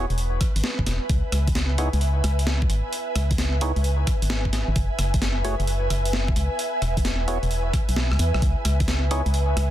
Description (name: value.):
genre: UK garage, two-step garage.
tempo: 131 BPM.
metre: 4/4.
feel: swing 66% on 16ths.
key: C# minor.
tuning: A4 = 441 Hz.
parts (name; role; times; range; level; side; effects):
percussive organ stab; stabs; 0.0-9.2 s; A3 to C#5; -31 LUFS; equal; chorus, ping-pong delay.
organ-like FM bass; bass; 0.0-9.7 s; E1 to E2; -23 LUFS; equal; none.
ethereal airy pad; texture; 0.0-9.7 s; B4 to G#5; -30 LUFS; right 1 dB; ensemble chorus, built-in reverb, tremolo, sidechain pumping.
breakbeat sampler-style drum kit; drums; 0.1-9.7 s; hi-hat, rim click, snare drum; -29 LUFS; equal; small room ambience.
electronic kick drum; drums; 0.4-8.9 s; none; -24 LUFS; equal; overdrive, small room ambience.
room: little or no reverb.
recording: dense, heavily limited modern master.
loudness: -21 LUFS.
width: side -12 dB against mid.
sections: 0.0-9.7 A section.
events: kick drops out 8.0-8.4; drum fill 8.0-8.4.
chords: 0.0 E; 1.1 C#m7; 4.8 F#7(no3); 6.6 E6; 8.4 C#m7.